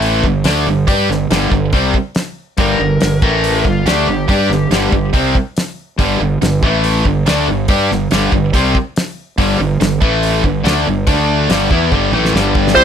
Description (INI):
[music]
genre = classic rock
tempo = 141 BPM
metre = 4/4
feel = straight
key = unclear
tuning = A4 = 440 Hz
[part]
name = overdriven semi-hollow guitar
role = riff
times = 0.0-12.8 s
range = G2 to G4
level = -17 LUFS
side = left 13 dB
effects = none
[part]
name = tight distorted guitar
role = riff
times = 0.0-12.8 s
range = G2 to G4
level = -17 LUFS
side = right 12 dB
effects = distortion
[part]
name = fuzz fingered electric bass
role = bass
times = 0.0-12.8 s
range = G1 to G2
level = -18 LUFS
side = equal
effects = overdrive
[part]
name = damped 70s drum kit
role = drums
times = 0.0-12.8 s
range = crash cymbal, hi-hat, kick drum, snare drum, toms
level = -17 LUFS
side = equal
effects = none
[part]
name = overdriven slide guitar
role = second line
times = 2.6-5.1 s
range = F4 to Bb4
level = -20 LUFS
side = left 5 dB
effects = none
[part]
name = dark smooth lead guitar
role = melody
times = 12.8 s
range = C5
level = -8 LUFS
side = right 1 dB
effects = overdrive
[part]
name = bright tonewheel organ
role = sustained chords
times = 12.8 s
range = G3 to C5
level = -9 LUFS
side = right 2 dB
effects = overdrive, stopped rotary speaker
[sound]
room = little or no reverb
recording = none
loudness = -12 LUFS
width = side -8 dB against mid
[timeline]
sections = 0.0-12.8 A section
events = drum fill 11.9-12.8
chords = 0.2 G5; 3.2 A5; 3.7 G5; 6.6 A5; 7.1 G5; 10.0 A5; 10.4 G5; 11.1 D5; 11.5 G